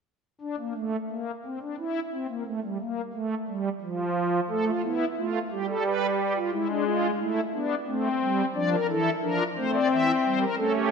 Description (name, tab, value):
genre	classical, baroque-style 4-part fugue for pipe organ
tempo	88 BPM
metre	3/4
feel	straight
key	D minor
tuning	A4 = 440 Hz
part	pipe organ, strings celeste	solo	0.4-10.9 s	E3 to E5	-25 LUFS	equal	none
room	wet scoring stage reverb, RT60 1.7 s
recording	none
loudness	-25 LUFS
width	side -6 dB against mid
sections	0.4-10.9 A section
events	none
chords	0.4 N.C.; 4.5 A5; 5.9 G; 6.5 E7/G#; 7.9 Am; 8.6 Dm; 9.9 C/E